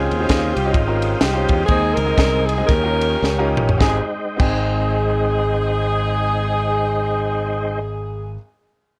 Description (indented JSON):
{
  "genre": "uptempo gospel",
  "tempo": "102-135 BPM",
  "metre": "4/4",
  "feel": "swing 59% on 8ths",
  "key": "Ab major",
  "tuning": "A4 = 441 Hz",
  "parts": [
    { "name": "warm saxophone section", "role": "melody", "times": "0.0-8.4 s", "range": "Ab3 to Bb4", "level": "-24 LUFS", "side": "equal", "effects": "none" },
    { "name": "clear baby grand piano", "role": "accompaniment", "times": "0.0-8.4 s", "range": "Ab1 to G5", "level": "-28 LUFS", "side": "equal", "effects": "none" },
    { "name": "tonewheel organ", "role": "sustained chords", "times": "0.0-7.8 s", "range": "Ab3 to Eb6", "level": "-28 LUFS", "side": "equal", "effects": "fast rotary speaker, chorus vibrato" },
    { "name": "modern bright fingered electric bass", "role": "bass", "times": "0.0-8.4 s", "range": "Ab1 to Fb2", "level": "-25 LUFS", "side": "equal", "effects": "none" },
    { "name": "tight funk drum kit", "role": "drums", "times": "0.1-4.6 s", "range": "crash cymbal, kick drum, ride cymbal, snare drum, toms", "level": "-23 LUFS", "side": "equal", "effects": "none" }
  ],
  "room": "light reverb",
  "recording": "worn, warbling old tape, cassette tape, warbly pitch drift",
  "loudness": "-19 LUFS",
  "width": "mono",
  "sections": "0.0-3.8 A section; 3.8-8.5 B section",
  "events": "slowing down 0.0-3.8; drum fill 3.2-3.8",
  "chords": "0.0 Dbmaj9#11; 1.7 Ab; 2.7 Eb9; 3.8 Abmaj7",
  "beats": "0.30 0.75 1.21 | 1.69 2.18 2.69 3.23 | 3.81 4.40 4.99 5.58 | 6.17 6.76 7.35 7.94"
}